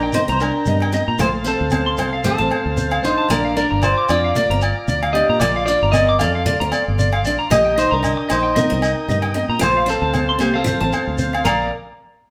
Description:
highlife guitar band; 114 BPM; 4/4; swing 54% on 16ths; Bb major; A4 = 440 Hz
clean electric guitar; melody; 0.0-11.7 s; Bb3 to F5; -22 LUFS; equal
picked steel-string acoustic guitar; accompaniment; 0.0-11.6 s; F3 to Eb4; -29 LUFS; equal
overdriven combo organ; sustained chords; 0.0-11.7 s; Bb4 to Eb6; -33 LUFS; equal
clean electric guitar; arpeggios; 0.0-11.7 s; C5 to D6; -24 LUFS; equal
fingered electric bass; bass; 0.0-11.7 s; G1 to Bb2; -25 LUFS; equal
cajon; drums; 0.0-11.6 s; -36 LUFS; equal
congas; percussion; 0.1-11.7 s; -31 LUFS; equal
shekere; percussion; 0.1-11.7 s; -30 LUFS; equal
agogo bells; percussion; 0.4-11.6 s; -30 LUFS; equal
wet large studio reverb, RT60 0.9 s; band playing live in one room; -18 LUFS; mono
0.0-11.7 A section
kick and snare drop out 11.5
0.0 Eb/Bb; 1.2 F/Bb; 3.3 Bb; 7.5 Eb/Bb; 9.6 F/Bb; 11.5 Bb; 11.7 N.C.
0.15 0.67 | 1.20 1.72 2.25 2.78 | 3.30 3.83 4.35 4.88 | 5.41 5.93 6.46 6.99 | 7.51 8.04 8.56 9.09 | 9.62 10.14 10.67 11.20

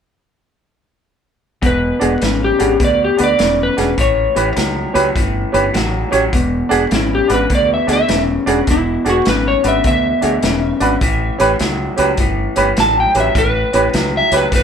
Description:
electric blues shuffle; 102 BPM; 4/4; swing 65% on 8ths; A4 = 440 Hz
electric guitar through a small old amp; riff; 1.6-14.6 s; E2 to F#3; -19 LUFS; left 2 dB
fingered electric bass; bass; 1.6-14.6 s; E1 to D2; -21 LUFS; equal
vintage drum kit; drums; 1.6-14.6 s; hi-hat, kick drum, snare drum; -20 LUFS; equal
electric slide guitar; melody; 1.7-14.6 s; E4 to A5; -16 LUFS; left 1 dB
clear upright piano; accompaniment; 2.0-14.4 s; C#4 to C#5; -17 LUFS; right 4 dB
moderate studio reverb, RT60 0.7 s; band playing live in one room; -13 LUFS; side -7 dB against mid
1.6-14.6 A section
electric slide guitar solo 1.6-14.6
1.6 E9; 4.0 A9; 6.3 E9; 11.0 A9
| 1.63 2.21 2.80 3.39 | 3.98 4.57 5.15 5.74 | 6.33 6.92 7.50 8.09 | 8.67 9.26 9.84 10.43 | 11.01 11.60 12.18 12.77 | 13.35 13.93 14.52

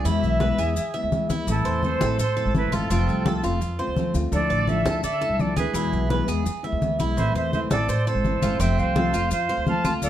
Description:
latin, Cuban son and guajira; 168 BPM; 4/4; straight; A harmonic minor; A4 = 438 Hz
jazz flute; melody; 0.0-10.1 s; A4 to A5; -28 LUFS; right 1 dB
nylon-string guitar; accompaniment; 0.0-10.1 s; B2 to F4; -27 LUFS; left 3 dB
Cuban tres; arpeggios; 0.0-10.1 s; C4 to E5; -29 LUFS; right 3 dB
upright bass; bass; 0.0-10.1 s; F1 to E3; -26 LUFS; equal
congas; percussion; 0.0-10.1 s; -28 LUFS; left 2 dB
maracas; percussion; 0.1-10.1 s; -40 LUFS; left 6 dB
clear trumpet; second line; 1.5-10.1 s; E4 to F5; -32 LUFS; right 7 dB
light reverb; dark, warm production; -21 LUFS; side -11 dB against mid
0.0-1.5 A section; 1.5-10.1 A section
0.1 E; 1.5 Am; 2.9 F; 4.3 Dmadd9; 5.8 E; 7.2 Am; 8.6 F
| 0.05 0.41 0.76 1.12 | 1.48 1.83 2.19 2.54 | 2.90 3.26 3.61 3.97 | 4.32 4.68 5.04 5.39 | 5.75 6.11 6.46 6.82 | 7.18 7.53 7.89 8.25 | 8.60 8.96 9.32 9.68 | 10.03

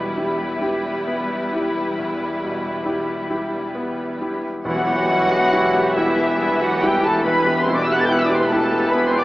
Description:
classical, romantic movement for piano and orchestra; 43-48 BPM (dotted quarters); 12/8; rubato; E minor; A4 = 440 Hz
clear concert grand piano; melody; 0.0-9.2 s; E2 to E5; -24 LUFS; equal
muted studio violin section; melody; 0.0-9.2 s; B4 to A6; -25 LUFS; left 1 dB
muted studio violin section; second line; 0.0-9.2 s; E4 to A5; -29 LUFS; left 1 dB
muted studio viola section; accompaniment; 0.0-9.2 s; G3 to G4; -28 LUFS; right 1 dB
mellow French horn section; sustained chords; 0.0-9.2 s; E3 to A4; -29 LUFS; left 2 dB
muted studio double bass section; bass; 0.0-9.2 s; E1; -37 LUFS; right 1 dB
muted symphonic cello section; bass; 0.0-9.2 s; E2; -35 LUFS; right 1 dB
timpani; percussion; 4.6-5.9 s; E2; -37 LUFS; left 1 dB
clear clarinet; second line; 4.7-9.2 s; E4 to A5; -28 LUFS; left 1 dB
silver concert flute; second line; 4.7-9.2 s; E5 to A6; -26 LUFS; left 1 dB
warm cor anglais; second line; 4.7-9.2 s; B4; -26 LUFS; right 2 dB
warm bassoon; accompaniment; 4.7-9.2 s; E3; -25 LUFS; right 1 dB
warm tuba; bass; 4.7-9.2 s; E1; -28 LUFS; right 1 dB
wet concert hall reverb, RT60 2.3 s; AM radio sound; -17 LUFS; side -17 dB against mid
0.0-4.7 A section; 4.7-9.2 A section
0.0 Em
0.62 1.98 3.30 | 4.67 5.98 7.26 8.51

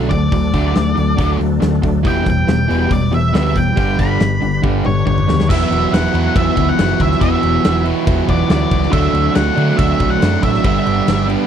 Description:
classic rock; 140 BPM; 4/4; straight; E minor; A4 = 440 Hz
overdriven tonewheel organ; sustained chords; 0.0-5.5 s; D4 to B4; -29 LUFS; left 1 dB; slow rotary speaker, chorus vibrato
cranked stack guitar; riff; 0.0-11.5 s; E2 to G4; -20 LUFS; left 12 dB; overdrive
overdriven semi-hollow guitar; riff; 0.0-11.5 s; G2 to E4; -19 LUFS; right 13 dB
hollow-body short-scale fingered electric bass; bass; 0.0-11.3 s; E1 to D3; -18 LUFS; equal
octave-fuzz lead guitar; melody; 0.1-11.3 s; C#5 to B5; -20 LUFS; equal; distortion, slapback echo
big rock drum kit; drums; 0.1-11.4 s; crash cymbal, hi-hat, kick drum, snare drum, toms; -19 LUFS; left 1 dB
little or no reverb; dry, close 1970s-style studio recording; -12 LUFS; side -8 dB against mid
0.0-5.5 A section; 5.5-11.5 B section
drum fill 4.6-5.5
0.0 D; 2.1 Em; 3.8 G; 5.5 Esus2; 8.9 D; 10.6 G
| 0.33 0.76 1.19 1.62 | 2.05 2.48 2.92 3.35 | 3.78 4.21 4.64 5.07 | 5.50 5.93 6.36 6.79 | 7.22 7.65 8.08 8.51 | 8.94 9.36 9.79 10.22 | 10.65 11.08

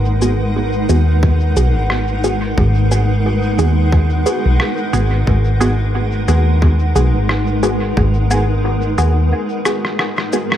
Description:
ambient dub; 89 BPM; 4/4; swing 57% on 16ths; G# minor; A4 = 440 Hz
granular cloud pad; sustained chords; 0.0-10.6 s; G#3 to F#5; -20 LUFS; equal; built-in reverb
hollow-body short-scale fingered electric bass; bass; 0.0-9.3 s; G#1 to D#2; -14 LUFS; equal
filtered dub chord stab; stabs; 0.2-10.6 s; B3 to G#4; -21 LUFS; right 1 dB; phaser, cassette tape, dub echo
electronic cabasa and rim click; drums; 0.2-10.6 s; -22 LUFS; left 1 dB; studio reverb, dub echo
electronic kick drum; drums; 1.2-8.1 s; -18 LUFS; equal; studio reverb
light reverb; echo-heavy mix; -13 LUFS; side -11 dB against mid
0.0-10.6 A section
break 9.3-10.6; drum fill 9.7-10.6
0.0 G#m7
0.55 1.23 1.90 | 2.58 3.25 3.92 4.60 | 5.27 5.95 6.62 7.29 | 7.97 8.64 9.32 9.99

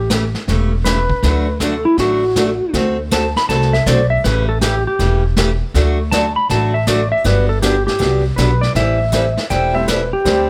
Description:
country, western swing; 160 BPM; 4/4; swing 65% on 8ths; A4 = 440 Hz
clean lap steel guitar; second line; 0.0-10.5 s; E4 to B5; -20 LUFS; equal
upright bass; bass; 0.0-10.5 s; E1 to D2; -20 LUFS; equal
picked acoustic archtop guitar; accompaniment; 0.1-10.5 s; C#3 to A4; -23 LUFS; equal
vintage brush drum kit; drums; 0.1-10.5 s; brushed snare drum, hi-hat, kick drum, snare drum; -24 LUFS; equal
bright upright piano; accompaniment; 9.7-10.5 s; G3 to G4; -23 LUFS; equal
light reverb; -16 LUFS; mono
0.0-10.5 A section
electric slide guitar solo 0.0-10.5
0.0 A7; 1.2 D; 2.7 D7; 4.2 A7; 5.7 D; 7.2 Gmaj7; 8.8 Am7
0.11 0.49 0.86 | 1.24 1.61 1.99 2.36 | 2.74 3.12 3.49 3.87 | 4.24 4.62 5.00 5.37 | 5.75 6.12 6.50 6.87 | 7.25 7.63 8.00 8.38 | 8.75 9.13 9.50 9.88 | 10.26

